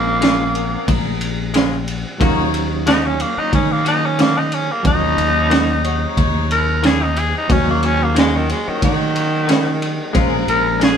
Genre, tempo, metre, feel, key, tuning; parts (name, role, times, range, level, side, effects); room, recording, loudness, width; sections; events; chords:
straight-eighth soul blues; 91 BPM; 4/4; swing 54% on 16ths; A4 = 438 Hz
raspy tenor saxophone; melody; 0.0-11.0 s; Eb3 to Bb4; -19 LUFS; equal
overdriven reed electric piano; accompaniment; 0.0-11.0 s; Gb3 to C5; -26 LUFS; right 1 dB; fast tremolo
dark chamber string section; sustained chords; 0.0-10.7 s; Eb4 to Db5; -26 LUFS; left 3 dB
fingered electric bass; bass; 0.0-11.0 s; Bb1 to Eb3; -21 LUFS; equal
direct-recorded clean electric guitar; stabs; 0.2-11.0 s; Eb3 to Gb4; -25 LUFS; left 6 dB
crunchy breakbeat drum kit; drums; 0.2-11.0 s; kick drum, ride cymbal, snare drum; -19 LUFS; right 1 dB
moderate studio reverb, RT60 0.8 s; band playing live in one room; -14 LUFS; side -8 dB against mid
0.0-11.0 A section
tenor saxophone solo 0.0-11.0
0.0 Bbm7; 2.2 Ebm7; 10.1 Bbm7